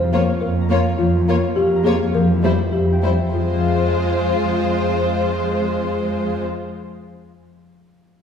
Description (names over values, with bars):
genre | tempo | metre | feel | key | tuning
cinematic | 103 BPM | 2/4 | straight | F minor | A4 = 440 Hz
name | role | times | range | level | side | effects
folk marimba with soft mallets | melody | 0.0-7.1 s | F4 to C5 | -22 LUFS | left 1 dB | none
concert harp | arpeggios | 0.0-7.3 s | F3 to Bb5 | -24 LUFS | left 4 dB | none
warm studio cello section | bass | 0.0-6.4 s | F2 | -22 LUFS | right 2 dB | none
warm studio violin section | melody | 0.1-6.4 s | C5 to Db5 | -25 LUFS | left 2 dB | none
rich studio violin section | second line | 0.1-6.4 s | E4 to F4 | -27 LUFS | left 4 dB | none
warm studio viola section | accompaniment | 0.1-6.4 s | G3 to Bb3 | -24 LUFS | equal | none
room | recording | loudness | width
wet scoring stage reverb, RT60 1.9 s | heard from further back in the room | -16 LUFS | side -7 dB against mid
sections
0.0-3.3 A section; 3.3-5.7 B section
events
none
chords
0.0 Bbm/F; 2.1 C7/F; 3.3 Fm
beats
0.42 | 0.99 1.56 | 2.14 2.73 | 3.33 3.91 | 4.50 5.08